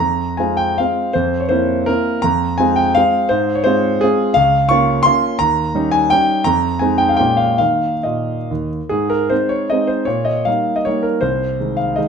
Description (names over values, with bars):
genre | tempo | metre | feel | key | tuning
classical, romantic triple-time dance for piano with dotted rhythms | 127-187 BPM | 3/4 | rubato | F minor, Ab major from 4.4 s | A4 = 440 Hz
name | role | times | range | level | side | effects
warm concert grand piano | solo | 0.0-12.1 s | C2 to Db6 | -14 LUFS | equal | none
room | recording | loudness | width
moderate stone room reverb, RT60 1.0 s | none | -14 LUFS | side -6 dB against mid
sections
0.0-8.9 A section; 8.9-12.1 B section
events
none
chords
0.0 Fm; 1.1 C7/F; 2.2 Fm; 3.3 Fm/Ab; 4.4 Bbm/Db; 5.4 Eb7; 6.5 Fm7; 7.2 Bbm7; 7.6 Eb5; 8.9 Ab; 10.1 Eb/Bb; 11.2 Ab/C